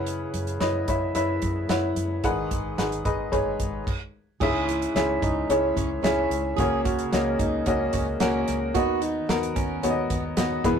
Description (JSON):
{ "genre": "piano-driven pop", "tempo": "111 BPM", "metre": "4/4", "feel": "straight", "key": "unclear", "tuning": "A4 = 439 Hz", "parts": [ { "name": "bright upright piano", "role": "accompaniment", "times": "0.0-10.8 s", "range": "G#2 to F#5", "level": "-24 LUFS", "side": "left 1 dB", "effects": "none" }, { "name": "vintage muted fingered electric bass", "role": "bass", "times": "0.0-10.8 s", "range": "G#1 to F#2", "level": "-33 LUFS", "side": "right 1 dB", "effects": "none" }, { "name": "damped 70s drum kit", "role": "drums", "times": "0.1-10.8 s", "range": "crash cymbal, hi-hat, kick drum, snare drum", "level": "-29 LUFS", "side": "right 1 dB", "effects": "none" }, { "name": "fingerpicked plugged-in steel-string acoustic guitar", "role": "riff", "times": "4.4-10.8 s", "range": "B3 to G#4", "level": "-30 LUFS", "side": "right 4 dB", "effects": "none" } ], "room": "moderate small room reverb, RT60 0.5 s", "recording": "rough rehearsal-room recording, tube saturation", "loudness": "-23 LUFS", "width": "side -7 dB against mid", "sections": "0.0-4.4 A section; 4.4-10.8 B section", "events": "stop 3.9-4.4; upright piano fill 7.9-8.8", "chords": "0.0 F#7sus4; 2.2 G#m7; 4.4 C#m; 6.6 F#/C#; 8.8 B/D#", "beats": "| 0.07 0.61 1.16 1.70 | 2.24 2.79 3.33 3.87 | 4.41 4.96 5.50 6.04 | 6.58 7.12 7.67 8.21 | 8.75 9.29 9.83 10.38" }